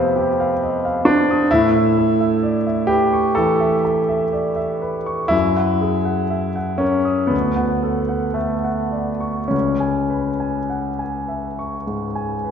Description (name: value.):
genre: classical, impressionist solo piano.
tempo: 50-66 BPM.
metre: 4/4.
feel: rubato.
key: C# minor from 5.3 s.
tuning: A4 = 442 Hz.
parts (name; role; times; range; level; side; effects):
warm concert grand piano; solo; 0.0-12.5 s; C#2 to Eb6; -17 LUFS; equal; none.
room: wet concert hall reverb, RT60 1.8 s.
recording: heard from further back in the room.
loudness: -17 LUFS.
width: side -7 dB against mid.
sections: 0.0-12.5 A section.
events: none.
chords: 0.0 F9; 1.5 Aadd9; 5.3 F#13; 7.3 Dmaj7; 9.5 C#m7.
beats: 0.59 | 1.50 2.41 3.35 4.34 | 5.33 6.33 7.33 8.39 | 9.53 10.71 11.88.